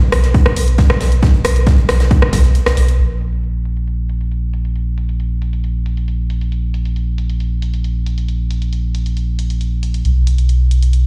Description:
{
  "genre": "driving peak-time techno",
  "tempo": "136 BPM",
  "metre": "4/4",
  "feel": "straight",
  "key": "unclear",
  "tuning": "A4 = 439 Hz",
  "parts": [
    { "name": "saturated sub bass", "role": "bass", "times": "0.0-11.1 s", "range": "Bb1 to Cb2", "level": "-18 LUFS", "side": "equal", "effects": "sidechain pumping, low-pass filter" },
    { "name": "big rock drum kit", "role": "drums", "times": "0.1-3.0 s", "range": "hi-hat, snare drum", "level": "-33 LUFS", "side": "equal", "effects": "high-pass filter on hats, high-pass filter on snare, high-pass filter on room" },
    { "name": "punchy analog drum machine", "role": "drums", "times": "0.1-11.0 s", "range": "crash cymbal, hi-hat, rim click", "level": "-23 LUFS", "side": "equal", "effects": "overdrive, low-pass filter on snare, low-pass filter on hats, low-pass filter on cymbals" },
    { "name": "electronic kick drum", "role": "drums", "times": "0.3-2.4 s", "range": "none", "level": "-15 LUFS", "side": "equal", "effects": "overdrive" }
  ],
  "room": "light reverb, small room ambience",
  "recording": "played on a big sound system in a bare room, large studio reverb",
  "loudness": "-16 LUFS",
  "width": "mono",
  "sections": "0.0-3.0 A section; 3.0-11.1 B section",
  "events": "break 2.5-3.0; filter sweep on drum 3.0-11.1",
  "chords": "none"
}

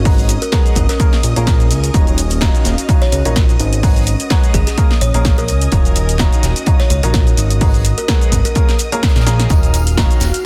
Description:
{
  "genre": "piano house",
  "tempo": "127 BPM",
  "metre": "4/4",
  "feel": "swing 55% on 16ths",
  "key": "Eb minor",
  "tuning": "A4 = 439 Hz",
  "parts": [
    { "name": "string machine, violins", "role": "sustained chords", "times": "0.0-10.5 s", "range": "Eb5 to F6", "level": "-31 LUFS", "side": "equal", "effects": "ensemble chorus, sidechain pumping" },
    { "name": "fat analog bass", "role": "bass", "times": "0.0-10.3 s", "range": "Eb1 to Db2", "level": "-18 LUFS", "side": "equal", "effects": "sidechain pumping" },
    { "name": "airy breathy pad", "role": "texture", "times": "0.0-10.5 s", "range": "Db4 to Ab5", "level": "-31 LUFS", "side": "equal", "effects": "chorus, sidechain pumping" },
    { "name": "clear upright piano", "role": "riff", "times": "0.1-10.2 s", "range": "Eb3 to Bb5", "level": "-26 LUFS", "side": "equal", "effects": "sidechain pumping, delay" },
    { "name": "electronic kick drum", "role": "drums", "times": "0.1-10.1 s", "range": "none", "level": "-16 LUFS", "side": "equal", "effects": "none" },
    { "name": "punchy analog drum machine", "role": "drums", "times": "0.1-10.4 s", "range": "hi-hat, shaker, snare drum", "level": "-24 LUFS", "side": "equal", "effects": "none" },
    { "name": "tight metal drum kit", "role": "drums", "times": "0.1-10.3 s", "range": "hi-hat, snare drum", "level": "-33 LUFS", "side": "equal", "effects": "none" },
    { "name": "kalimba", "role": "melody", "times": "0.4-8.6 s", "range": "Ab4 to Db5", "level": "-28 LUFS", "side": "equal", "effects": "delay" },
    { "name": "tambourine", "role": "percussion", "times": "9.5-10.4 s", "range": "none", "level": "-34 LUFS", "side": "equal", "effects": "none" }
  ],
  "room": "small room ambience",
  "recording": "dense, heavily limited modern master",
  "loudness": "-14 LUFS",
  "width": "mono",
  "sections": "0.0-10.5 A section",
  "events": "drum fill 9.1-9.5",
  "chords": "0.1 Abm11; 1.0 Bbm7; 1.9 Ebm9; 3.8 Abm11; 4.8 Bbm7; 5.7 Ebm9; 7.6 Abm11; 8.6 Bbm7; 9.5 Ebm9"
}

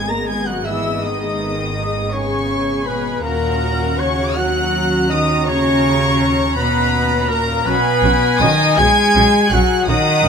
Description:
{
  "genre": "cinematic",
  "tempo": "54 BPM (dotted quarters)",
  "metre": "6/8",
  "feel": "rubato",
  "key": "G# minor",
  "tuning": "A4 = 436 Hz",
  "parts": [
    { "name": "warm symphonic violin section", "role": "melody", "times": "0.0-10.3 s", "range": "A#5 to A#6", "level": "-21 LUFS", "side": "left 4 dB", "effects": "none" },
    { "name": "dark clarinet", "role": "second line", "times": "0.0-10.3 s", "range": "A#4 to A#5", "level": "-26 LUFS", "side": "left 2 dB", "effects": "none" },
    { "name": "large flute ensemble", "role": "second line", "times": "0.0-10.3 s", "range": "A#4 to A#5", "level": "-25 LUFS", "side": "equal", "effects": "none" },
    { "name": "warm oboe", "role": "second line", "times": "0.0-10.3 s", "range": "A#4 to A#5", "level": "-24 LUFS", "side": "right 3 dB", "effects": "none" },
    { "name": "warm studio violin section", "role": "second line", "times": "0.0-10.3 s", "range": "D#5 to A#5", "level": "-24 LUFS", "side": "left 2 dB", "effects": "none" },
    { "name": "dark symphonic viola section", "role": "accompaniment", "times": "0.0-10.3 s", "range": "B3 to G#4", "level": "-26 LUFS", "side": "right 1 dB", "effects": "none" },
    { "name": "mellow French horn section", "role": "sustained chords", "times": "0.0-10.3 s", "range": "A#3 to A#4", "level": "-23 LUFS", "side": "left 5 dB", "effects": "none" },
    { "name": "dark symphonic double bass section", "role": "bass", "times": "0.0-10.3 s", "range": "G#1 to D#2", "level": "-23 LUFS", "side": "right 2 dB", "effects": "none" },
    { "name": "rich symphonic cello section", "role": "bass", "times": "0.0-10.3 s", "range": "A#2 to A#3", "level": "-21 LUFS", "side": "right 1 dB", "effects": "none" }
  ],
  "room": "moderate scoring stage reverb, RT60 2.1 s",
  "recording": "none",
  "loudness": "-14 LUFS",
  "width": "side -6 dB against mid",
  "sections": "0.0-10.3 A section",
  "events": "none",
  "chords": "0.0 G#madd9; 3.2 D#m7; 7.7 Badd9"
}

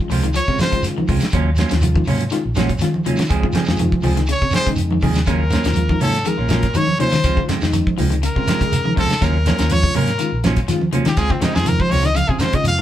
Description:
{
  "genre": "afrobeat",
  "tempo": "122 BPM",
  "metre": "4/4",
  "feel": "straight",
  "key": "Eb dorian",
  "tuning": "A4 = 440 Hz",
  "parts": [
    { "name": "reed electric piano", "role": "accompaniment", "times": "0.0-12.8 s", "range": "Eb3 to Ab4", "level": "-26 LUFS", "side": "left 3 dB", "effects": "fast tremolo" },
    { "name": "electric guitar at the edge of break-up", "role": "arpeggios", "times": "0.0-12.8 s", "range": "C3 to Gb3", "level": "-26 LUFS", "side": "left 5 dB", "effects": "spring reverb" },
    { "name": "semi-hollow electric guitar", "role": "stabs", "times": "0.1-12.6 s", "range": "F3 to Ab4", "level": "-24 LUFS", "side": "right 5 dB", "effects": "spring reverb" },
    { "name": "fingered electric bass", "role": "bass", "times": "0.1-12.8 s", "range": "Bb1 to Eb3", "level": "-21 LUFS", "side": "equal", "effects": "none" },
    { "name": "damped 70s drum kit", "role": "drums", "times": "0.1-12.8 s", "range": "hi-hat, kick drum, snare drum", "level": "-22 LUFS", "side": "left 1 dB", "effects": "none" },
    { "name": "congas", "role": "percussion", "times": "0.1-12.8 s", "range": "none", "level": "-23 LUFS", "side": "right 2 dB", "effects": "none" },
    { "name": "shekere", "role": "percussion", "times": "0.1-12.8 s", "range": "none", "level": "-27 LUFS", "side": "right 2 dB", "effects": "none" },
    { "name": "brilliant trumpet", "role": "melody", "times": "0.4-0.8, 4.3-12.8 s", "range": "C4 to F5", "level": "-21 LUFS", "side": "left 1 dB", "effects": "none" }
  ],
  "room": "light reverb",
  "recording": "band playing live in one room",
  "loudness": "-15 LUFS",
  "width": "side -12 dB against mid",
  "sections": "0.0-12.8 A section",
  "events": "trumpet solo 0.0-12.8",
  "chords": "0.0 Dbmaj7; 1.3 Ebm9; 3.3 Dbmaj7; 5.3 Ebm9; 7.2 Dbmaj7; 9.2 Ebm9; 11.2 Dbmaj7"
}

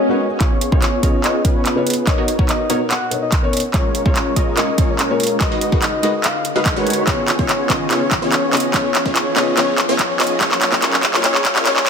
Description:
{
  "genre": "future bass",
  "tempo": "144 BPM",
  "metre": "4/4",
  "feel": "half-time",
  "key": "unclear",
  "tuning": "A4 = 440 Hz",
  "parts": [
    { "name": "felt-muted upright piano", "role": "accompaniment", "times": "0.0-11.8 s", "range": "A#2 to C#5", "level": "-24 LUFS", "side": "left 4 dB", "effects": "sidechain pumping, ping-pong delay" },
    { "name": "supersaw stab", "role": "riff", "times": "0.0-11.9 s", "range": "G#3 to G#5", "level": "-21 LUFS", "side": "right 1 dB", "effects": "sidechain pumping, low-pass filter, ping-pong delay" },
    { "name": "swell and riser", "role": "sound effects", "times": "0.0-11.9 s", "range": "none", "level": "-27 LUFS", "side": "equal", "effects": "none" },
    { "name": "soft octave-layered synth lead", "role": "melody", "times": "0.1-11.9 s", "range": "A#4 to F#5", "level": "-24 LUFS", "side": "left 2 dB", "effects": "chorus, sidechain pumping, ping-pong delay" },
    { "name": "electronic kick drum", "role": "drums", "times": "0.4-11.5 s", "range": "none", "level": "-18 LUFS", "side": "equal", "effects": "none" },
    { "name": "pop drum kit", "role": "drums", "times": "0.4-11.9 s", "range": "handclaps, hi-hat", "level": "-19 LUFS", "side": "equal", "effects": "low-pass filter on snare, low-pass filter on hats" }
  ],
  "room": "light reverb",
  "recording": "dense, heavily limited modern master, high-pass filter",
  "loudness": "-14 LUFS",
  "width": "side -6 dB against mid",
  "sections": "0.4-11.9 A section",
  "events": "swell 0.0-0.4; build-up 0.4-11.9; drum fill 0.4-11.9; riser 0.4-11.9; filter sweep on supersaw synth 0.4-11.9; filter sweep 0.4-11.9",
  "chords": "0.4 C#7; 2.1 Bmaj9; 3.7 A#m7; 5.4 G#m7; 7.1 C#7; 10.4 A#m7"
}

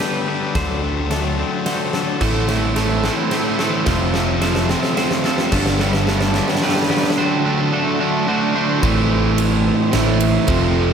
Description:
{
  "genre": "post-rock",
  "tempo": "109 BPM",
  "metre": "3/4",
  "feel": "straight",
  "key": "A minor",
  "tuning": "A4 = 437 Hz",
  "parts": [
    { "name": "evolving wavetable pad", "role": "sustained chords", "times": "0.0-10.9 s", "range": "A4 to C6", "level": "-29 LUFS", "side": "right 3 dB", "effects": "phaser, built-in reverb" },
    { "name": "twangy electric guitar", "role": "arpeggios", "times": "0.0-8.8 s", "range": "A2 to C5", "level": "-27 LUFS", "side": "left 1 dB", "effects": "wide subtle chorus, diffuse ambient delay" },
    { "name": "twelve-string electric guitar", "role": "arpeggios", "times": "0.0-8.8 s", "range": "A4 to C5", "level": "-30 LUFS", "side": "right 3 dB", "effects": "none" },
    { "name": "sludgy distorted guitar", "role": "riff", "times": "0.0-10.9 s", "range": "G2 to F4", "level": "-22 LUFS", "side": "left 8 dB", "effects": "overdrive" },
    { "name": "huge arena drum kit", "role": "drums", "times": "0.0-10.6 s", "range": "crash cymbal, kick drum, ride cymbal, snare drum", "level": "-23 LUFS", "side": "equal", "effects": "none" },
    { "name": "fretless electric bass", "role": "bass", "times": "0.6-10.9 s", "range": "F1 to D2", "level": "-21 LUFS", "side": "equal", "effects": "lush chorus" },
    { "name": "crunchy overdriven guitar", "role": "riff", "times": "2.2-10.9 s", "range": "F2 to D4", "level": "-20 LUFS", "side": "right 8 dB", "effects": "none" }
  ],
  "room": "wet lush hall reverb, RT60 2.3 s",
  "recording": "dreamy mix soaked in reverb",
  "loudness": "-16 LUFS",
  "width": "side -7 dB against mid",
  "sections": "0.0-8.8 A section; 8.8-10.9 B section",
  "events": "build-up 0.0-8.8; drum fill 0.0-7.2",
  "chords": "0.0 Gadd9; 0.6 D7; 2.2 Am; 3.9 Fmaj7; 5.5 Gadd9; 7.2 D7; 8.8 Am"
}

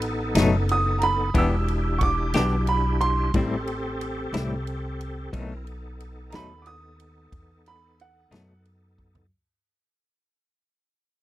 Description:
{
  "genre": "slow blues",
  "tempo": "60 BPM (dotted quarters)",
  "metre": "12/8",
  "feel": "straight",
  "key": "unclear",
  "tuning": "A4 = 440 Hz",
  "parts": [
    { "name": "bright tonewheel organ", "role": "sustained chords", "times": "0.0-9.3 s", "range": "B3 to A#4", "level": "-32 LUFS", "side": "equal", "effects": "slow rotary speaker, overdrive, chorus vibrato" },
    { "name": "upright bass", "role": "bass", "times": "0.0-9.3 s", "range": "E1 to F#2", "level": "-27 LUFS", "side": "equal", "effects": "none" },
    { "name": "natural country drum kit", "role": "drums", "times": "0.0-9.3 s", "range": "kick drum, ride cymbal, snare drum, toms", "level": "-26 LUFS", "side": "equal", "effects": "none" },
    { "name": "clean electric guitar", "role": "accompaniment", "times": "0.4-8.5 s", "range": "A2 to G4", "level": "-24 LUFS", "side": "left 3 dB", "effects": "tremolo" },
    { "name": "clear upright piano", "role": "second line", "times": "0.7-8.6 s", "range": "F#5 to E6", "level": "-26 LUFS", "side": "right 4 dB", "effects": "none" }
  ],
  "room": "little or no reverb",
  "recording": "dry, close 1970s-style studio recording",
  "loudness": "-22 LUFS",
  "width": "side -15 dB against mid",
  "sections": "0.0-9.3 A section",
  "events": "fade-out 0.0-9.3; upright piano solo 0.0-9.3; drum fill 9.0-9.3",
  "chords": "0.0 B7; 1.3 Em7; 3.3 Am7; 5.3 B7"
}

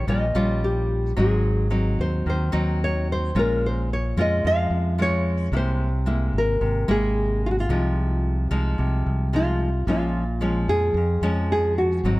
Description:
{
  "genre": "bossa nova",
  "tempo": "110 BPM",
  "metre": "4/4",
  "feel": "straight",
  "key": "Bb minor",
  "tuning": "A4 = 439 Hz",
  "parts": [
    { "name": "nylon-string guitar", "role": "melody", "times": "0.0-12.2 s", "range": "F4 to F5", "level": "-25 LUFS", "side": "equal", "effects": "none" },
    { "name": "nylon-string guitar", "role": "accompaniment", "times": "0.0-12.2 s", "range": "F2 to F4", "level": "-25 LUFS", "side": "left 1 dB", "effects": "none" },
    { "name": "fingered electric bass", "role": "bass", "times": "0.0-12.2 s", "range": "Ab1 to F2", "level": "-24 LUFS", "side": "equal", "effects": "none" }
  ],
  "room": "little or no reverb",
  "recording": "none",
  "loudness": "-20 LUFS",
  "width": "side -19 dB against mid",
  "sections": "0.0-12.2 A section",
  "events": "none",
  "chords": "0.0 Eb9; 1.2 Ab7; 3.3 Bbm7; 5.5 Caug7; 7.7 Fm7/C; 9.9 Bbm7"
}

